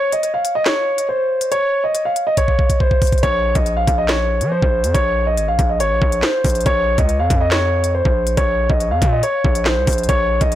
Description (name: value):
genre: hip hop, drill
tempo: 140 BPM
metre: 4/4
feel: half-time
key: Bb minor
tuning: A4 = 439 Hz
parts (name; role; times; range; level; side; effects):
- dark baby grand piano; melody; 0.0-10.6 s; C5 to F5; -17 LUFS; equal; low-pass filter, tape echo
- drill drum kit; drums; 0.1-10.6 s; handclaps, hi-hat, kick drum, snare drum; -18 LUFS; equal; none
- distorted 808-style bass; bass; 3.2-10.6 s; Ab1 to F3; -20 LUFS; equal; distortion
room: light reverb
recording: blown-out, overdriven recording, overdrive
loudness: -14 LUFS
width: side -12 dB against mid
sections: 0.0-10.6 A section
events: break 0.0-3.2; drum fill 2.4-3.2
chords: 0.0 N.C.; 3.2 Bbm